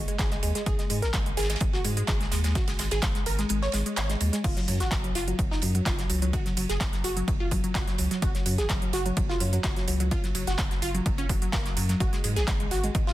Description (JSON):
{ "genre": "progressive house", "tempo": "127 BPM", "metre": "4/4", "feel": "straight", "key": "unclear", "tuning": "A4 = 439 Hz", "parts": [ { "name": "wide unison pluck", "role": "arpeggios", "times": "0.0-13.1 s", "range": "F#3 to C#5", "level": "-30 LUFS", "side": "equal", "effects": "cassette tape, sidechain pumping, digital delay" }, { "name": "saturated sub bass", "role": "bass", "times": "0.0-13.1 s", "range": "F#1 to G#2", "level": "-29 LUFS", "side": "equal", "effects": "sidechain pumping" }, { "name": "big-room dance drum kit", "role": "drums", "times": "0.1-13.0 s", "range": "crash cymbal, handclaps, hi-hat", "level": "-33 LUFS", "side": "right 2 dB", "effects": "overdrive" }, { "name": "damped 70s drum kit", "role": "drums", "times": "0.2-13.1 s", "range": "ride cymbal, snare drum", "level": "-38 LUFS", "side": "right 2 dB", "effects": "high-pass filter on cymbals, high-pass filter on snare, high-pass filter on room" }, { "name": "electronic kick drum", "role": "drums", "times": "0.2-13.0 s", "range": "none", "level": "-28 LUFS", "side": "equal", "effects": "overdrive" } ], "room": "little or no reverb", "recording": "dense, heavily limited modern master", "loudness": "-24 LUFS", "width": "side -15 dB against mid", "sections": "0.0-13.1 A section", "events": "kick drops out 3.5-4.4", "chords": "0.0 G#5; 4.4 F#5; 12.0 G#5" }